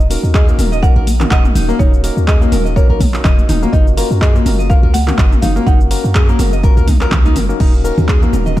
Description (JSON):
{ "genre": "afro house", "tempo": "124 BPM", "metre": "4/4", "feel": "swing 55% on 16ths", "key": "Eb minor", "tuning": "A4 = 441 Hz", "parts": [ { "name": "buzzing marimba with medium mallets", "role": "melody", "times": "0.0-7.1 s", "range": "Db5 to Gb5", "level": "-24 LUFS", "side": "right 2 dB", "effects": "vintage 12-bit sampler grit, digital delay" }, { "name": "warm 808-style bass", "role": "bass", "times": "0.0-8.6 s", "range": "Eb1 to Gb2", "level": "-16 LUFS", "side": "equal", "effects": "sidechain pumping" }, { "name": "deep house drum kit", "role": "drums", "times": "0.0-8.6 s", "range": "cabasa, crash cymbal, handclaps, hi-hat, toms", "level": "-22 LUFS", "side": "equal", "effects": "overdrive, studio reverb" }, { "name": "nylon-string guitar", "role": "arpeggios", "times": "0.1-8.6 s", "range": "Bb3 to Eb5", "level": "-21 LUFS", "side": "left 1 dB", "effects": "sidechain pumping, digital delay" }, { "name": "tine electric piano", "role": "stabs", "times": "0.1-8.6 s", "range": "Bb3 to Bb4", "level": "-22 LUFS", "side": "left 2 dB", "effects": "medium stereo tremolo, sidechain pumping, digital delay" }, { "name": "electronic kick drum", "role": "drums", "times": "0.3-8.6 s", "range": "none", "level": "-12 LUFS", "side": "equal", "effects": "studio reverb" }, { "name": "congas", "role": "percussion", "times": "0.6-8.5 s", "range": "none", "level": "-22 LUFS", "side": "left 1 dB", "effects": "none" } ], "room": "digital ambience", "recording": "dark, warm production", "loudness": "-10 LUFS", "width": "side -15 dB against mid", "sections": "0.0-7.6 A section", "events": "drop 0.0-7.6", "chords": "0.0 Ebm7; 3.7 Gbmaj7; 7.6 Ebm7" }